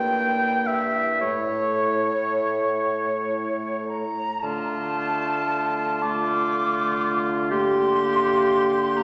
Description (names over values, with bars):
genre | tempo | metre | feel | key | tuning
classical, slow romantic movement for wind quintet | 37-42 BPM (dotted quarters) | 6/8 | rubato | D minor | A4 = 438 Hz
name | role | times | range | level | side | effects
silver concert flute | melody | 0.0-9.0 s | C#5 to D6 | -30 LUFS | equal | none
warm oboe | second line | 0.0-9.0 s | F4 to G5 | -28 LUFS | equal | none
mellow clarinet | accompaniment | 0.0-9.0 s | A3 to E4 | -37 LUFS | equal | none
warm French horn | accompaniment | 0.0-9.0 s | A3 to G4 | -29 LUFS | equal | none
mellow bassoon | bass | 0.0-9.0 s | G2 to D3 | -32 LUFS | equal | none
room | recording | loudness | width
wet concert hall reverb, RT60 2.1 s | none | -23 LUFS | mono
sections
0.0-4.4 A section; 4.4-9.0 B section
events
none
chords
0.0 Edim/G; 1.2 A; 4.4 Dm; 7.5 Gm/D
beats
| 1.21 2.82 | 4.42 6.02 | 7.50 8.96